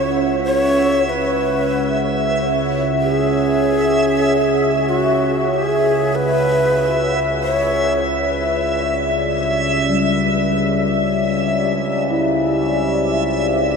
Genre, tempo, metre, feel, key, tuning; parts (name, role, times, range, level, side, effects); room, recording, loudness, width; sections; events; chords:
dark ambient drone; free time; C# locrian; A4 = 439 Hz
breathy mellow shakuhachi; melody; 0.0-8.0 s; F#4 to C#5; -20 LUFS; left 1 dB; ping-pong delay
dark analog pad; sustained chords; 0.0-13.8 s; C#4 to F#5; -21 LUFS; left 1 dB; chorus
overtone-sweeping drone; drone; 0.0-13.8 s; C#2 to C#3; -21 LUFS; right 2 dB; chorus, built-in reverb
backwards swelling texture; texture; 0.0-13.8 s; E5; -23 LUFS; right 1 dB; built-in reverb
gamelan-type bronze metallophone; arpeggios; 9.9-13.8 s; G3 to E4; -21 LUFS; left 5 dB; ping-pong delay
wet huge ambient reverb, RT60 8.4 s; cassette tape; -15 LUFS; side -5 dB against mid
0.0-13.8 A section
0.0 C#m; 8.1 Cadd9